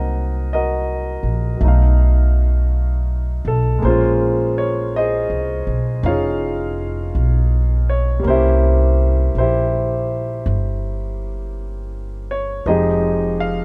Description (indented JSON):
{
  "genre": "jazz ballad",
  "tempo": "54 BPM",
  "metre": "4/4",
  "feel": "swing 66% on 8ths",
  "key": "unclear",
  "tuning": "A4 = 439 Hz",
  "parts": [
    { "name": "clear concert grand piano", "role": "accompaniment", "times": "0.0-13.6 s", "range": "F3 to E#5", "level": "-23 LUFS", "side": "equal", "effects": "none" },
    { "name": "upright bass", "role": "bass", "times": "0.0-13.6 s", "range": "F1 to C2", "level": "-20 LUFS", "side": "equal", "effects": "none" }
  ],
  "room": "little or no reverb",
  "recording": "dark, warm production",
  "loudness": "-18 LUFS",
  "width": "mono",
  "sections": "0.0-13.6 A section",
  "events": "none",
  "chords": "0.0 Cm7b5; 1.6 B7#11; 3.8 Bbm9; 8.2 C7b9; 12.7 Fm9"
}